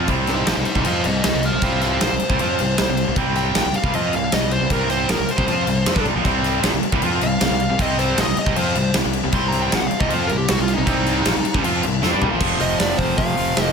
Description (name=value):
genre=hard rock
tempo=156 BPM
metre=4/4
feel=straight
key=C minor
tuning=A4 = 440 Hz
part: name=cranked stack guitar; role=riff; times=0.0-13.7 s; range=F2 to F4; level=-24 LUFS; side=right 13 dB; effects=overdrive
part: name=overdriven electric guitar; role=riff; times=0.0-13.7 s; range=F2 to F4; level=-25 LUFS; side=left 13 dB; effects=spring reverb
part: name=tight distorted guitar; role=riff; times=0.0-0.1, 6.2-13.7 s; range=F2 to F4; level=-27 LUFS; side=equal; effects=distortion
part: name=fuzz fingered electric bass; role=bass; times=0.0-13.7 s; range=F1 to G2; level=-25 LUFS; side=equal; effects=overdrive
part: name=huge arena drum kit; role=drums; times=0.1-13.7 s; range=crash cymbal, hi-hat, kick drum, snare drum, toms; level=-22 LUFS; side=equal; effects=none
part: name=dark smooth lead guitar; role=melody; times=0.3-13.7 s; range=Eb4 to C6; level=-24 LUFS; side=equal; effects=overdrive
room=light reverb, small room ambience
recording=none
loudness=-17 LUFS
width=side -6 dB against mid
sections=0.1-12.4 A section; 12.4-13.7 B section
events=lead electric guitar solo 0.1-12.4; drum fill 12.0-12.4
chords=0.1 Cm; 12.4 F5